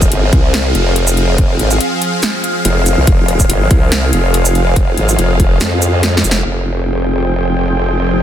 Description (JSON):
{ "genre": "heavy wobble dubstep", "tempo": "142 BPM", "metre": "4/4", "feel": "swing 53% on 16ths, half-time", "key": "F minor", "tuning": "A4 = 444 Hz", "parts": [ { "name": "supersaw pad", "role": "sustained chords", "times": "0.0-8.2 s", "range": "F3 to G5", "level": "-17 LUFS", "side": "equal", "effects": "phaser, sidechain pumping, low-pass filter" }, { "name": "formant-sweep wobble bass", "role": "bass", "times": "0.0-8.2 s", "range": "F1 to F2", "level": "-14 LUFS", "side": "equal", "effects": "chorus, overdrive" }, { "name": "big-room dance drum kit", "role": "drums", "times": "0.0-8.2 s", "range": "crash cymbal, hi-hat, shaker, snare drum", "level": "-18 LUFS", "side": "equal", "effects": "low-pass filter on hats, low-pass filter on perc, low-pass filter on snare, low-pass filter on cymbals" }, { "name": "electronic kick drum", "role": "drums", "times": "0.0-5.5 s", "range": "none", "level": "-12 LUFS", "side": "equal", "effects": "none" } ], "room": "digital ambience", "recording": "dense, heavily limited modern master", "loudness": "-11 LUFS", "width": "side -10 dB against mid", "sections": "0.0-6.5 A section; 6.5-8.2 B section", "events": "drop 0.0-6.5; drum fill 6.0-6.5; filter sweep on supersaw synth 6.5-8.2", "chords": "0.0 Fm" }